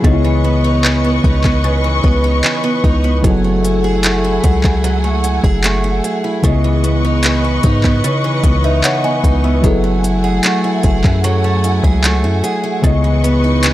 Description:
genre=contemporary R&B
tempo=75 BPM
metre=4/4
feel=straight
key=C# minor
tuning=A4 = 440 Hz
part: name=mellow tine electric piano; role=accompaniment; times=0.0-13.7 s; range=C#3 to G#5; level=-18 LUFS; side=left 1 dB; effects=phaser
part: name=warm studio string section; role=sustained chords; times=0.0-13.7 s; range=A3 to C#6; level=-21 LUFS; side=equal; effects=none
part: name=picked acoustic archtop guitar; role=arpeggios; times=0.0-13.7 s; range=C#3 to G#4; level=-19 LUFS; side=right 2 dB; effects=analog delay
part: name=warm 808-style bass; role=bass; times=0.0-13.7 s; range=F#1 to G#2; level=-16 LUFS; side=equal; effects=none
part: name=smooth R&B drum kit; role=drums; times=0.0-13.7 s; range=handclaps, hi-hat, kick drum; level=-15 LUFS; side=equal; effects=overdrive
room=little or no reverb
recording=dry, gritty hardware recording, transformer saturation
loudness=-12 LUFS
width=side -14 dB against mid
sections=0.0-13.7 A section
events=break 0.0-3.2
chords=0.0 C#m9; 3.2 F#m9; 6.4 C#m9; 9.6 F#m9; 12.8 C#m9

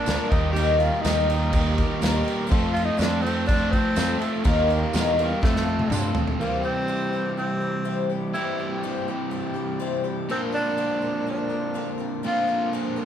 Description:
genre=folk rock and heartland rock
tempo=123 BPM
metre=4/4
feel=straight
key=unclear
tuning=A4 = 440 Hz
part: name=breathy tenor saxophone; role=melody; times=0.0-12.7 s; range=A3 to G4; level=-27 LUFS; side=equal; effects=none
part: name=picked twelve-string acoustic guitar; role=accompaniment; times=0.0-13.1 s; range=Bb2 to Bb4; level=-29 LUFS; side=left 4 dB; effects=none
part: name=crunchy overdriven guitar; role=riff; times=0.0-13.1 s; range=Bb2 to Bb4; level=-27 LUFS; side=right 1 dB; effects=none
part: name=picked electric bass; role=bass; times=0.1-6.1 s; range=D2 to G2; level=-26 LUFS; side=right 1 dB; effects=none
part: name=natural country drum kit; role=drums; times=0.1-6.4 s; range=crash cymbal, kick drum, snare drum, toms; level=-26 LUFS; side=equal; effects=none
part: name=tambourine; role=percussion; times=0.1-6.0 s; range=none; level=-39 LUFS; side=right 8 dB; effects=none
room=moderate large studio reverb, RT60 0.9 s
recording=band playing live in one room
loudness=-21 LUFS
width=side -9 dB against mid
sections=0.0-6.4 A section; 6.4-13.1 B section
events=drum fill 5.4-6.4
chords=0.3 Eb; 2.5 F; 4.5 Eb; 5.4 F; 6.4 C; 10.3 Bbadd9

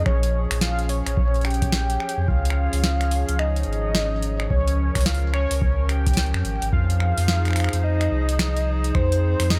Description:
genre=IDM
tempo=108 BPM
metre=4/4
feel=swing 62% on 16ths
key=unclear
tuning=A4 = 440 Hz
part: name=warbly tape-like pad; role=sustained chords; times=0.0-9.6 s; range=F3 to Db5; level=-33 LUFS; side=equal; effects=chorus, built-in reverb
part: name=warm sub bass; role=bass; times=0.0-9.6 s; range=Ab1 to F2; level=-24 LUFS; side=equal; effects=none
part: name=warm velvety synth lead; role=melody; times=0.1-9.6 s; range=C5 to G5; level=-30 LUFS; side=equal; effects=chorus, tremolo, cassette tape, delay
part: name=booming analog drum machine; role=drums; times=0.1-9.6 s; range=finger snaps, hi-hat, snare drum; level=-29 LUFS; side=equal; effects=none
part: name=electronic kick drum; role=drums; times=0.1-9.1 s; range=none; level=-26 LUFS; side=equal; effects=none
room=digital ambience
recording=faint mains hum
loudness=-22 LUFS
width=mono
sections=0.0-9.6 A section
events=none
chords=0.0 Bbm7; 2.3 Db; 6.7 Fm7

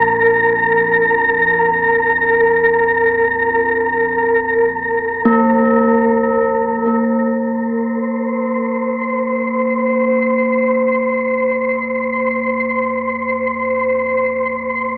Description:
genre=dark ambient drone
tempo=free time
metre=none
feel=none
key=unclear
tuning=A4 = 435 Hz
part: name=deep rumbling drone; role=drone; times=0.0-15.0 s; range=Bb1 to F2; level=-36 LUFS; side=equal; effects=built-in reverb
part: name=wind-like tuned noise texture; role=texture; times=0.0-15.0 s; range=Bb4 to C5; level=-17 LUFS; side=equal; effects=built-in reverb
part: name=quartz singing bowl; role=arpeggios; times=5.3-11.7 s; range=Bb3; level=-20 LUFS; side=equal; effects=diffuse ambient delay
room=wet huge ambient reverb, RT60 6.9 s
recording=cassette tape, AM radio sound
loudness=-15 LUFS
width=mono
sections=0.0-7.4 A section; 7.4-15.0 B section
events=filter sweep on synth drone 7.4-15.0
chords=0.0 Bb5; 7.4 Bbsus2

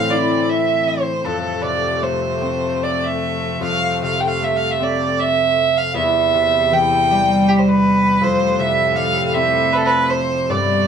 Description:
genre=celtic folk, Celtic slow air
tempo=78 BPM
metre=3/4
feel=uneven beats, rubato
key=unclear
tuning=A4 = 440 Hz
part: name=dark fiddle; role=melody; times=0.0-10.9 s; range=G4 to G5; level=-17 LUFS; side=right 2 dB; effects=none
part: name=concert harp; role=accompaniment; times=0.0-10.9 s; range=E2 to E4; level=-20 LUFS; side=left 2 dB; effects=none
part: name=warm studio string section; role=sustained chords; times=0.0-10.9 s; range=E2 to C4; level=-27 LUFS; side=equal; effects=none
room=light reverb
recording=band playing live in one room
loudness=-15 LUFS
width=side -7 dB against mid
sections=0.0-10.9 A section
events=none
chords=0.0 Am; 1.2 F; 5.9 C/E; 8.2 Fadd9

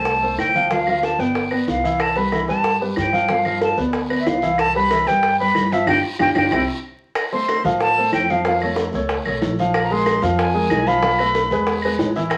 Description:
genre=Afro-Cuban jazz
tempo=186 BPM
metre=4/4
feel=straight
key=C major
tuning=A4 = 440 Hz
part: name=breathy bright concert flute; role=melody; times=0.0-11.8 s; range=E5 to C6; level=-22 LUFS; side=equal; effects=none
part: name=warm baby grand piano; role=accompaniment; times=0.0-12.4 s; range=E3 to F5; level=-24 LUFS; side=equal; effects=none
part: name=upright bass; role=bass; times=0.0-12.4 s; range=G1 to A2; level=-31 LUFS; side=equal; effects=none
part: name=bongos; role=percussion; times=0.1-12.4 s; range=none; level=-27 LUFS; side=equal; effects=none
part: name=guiro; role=percussion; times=0.1-12.4 s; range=none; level=-40 LUFS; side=equal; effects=none
part: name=claves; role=percussion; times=0.4-12.4 s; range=none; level=-30 LUFS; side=equal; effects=none
room=wet studio reverb, RT60 0.6 s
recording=vinyl crackle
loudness=-19 LUFS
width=mono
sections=0.0-7.2 A section; 7.2-12.4 B section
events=band accent 5.9-7.2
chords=0.0 Fadd9; 0.7 Dm; 1.4 G6; 2.0 Cmaj7; 3.3 G7; 4.6 Cmaj7; 5.9 G5; 6.5 C; 7.2 F; 8.5 Faug; 9.7 Bbsus2; 11.0 Fmaj7#11/B; 11.7 E

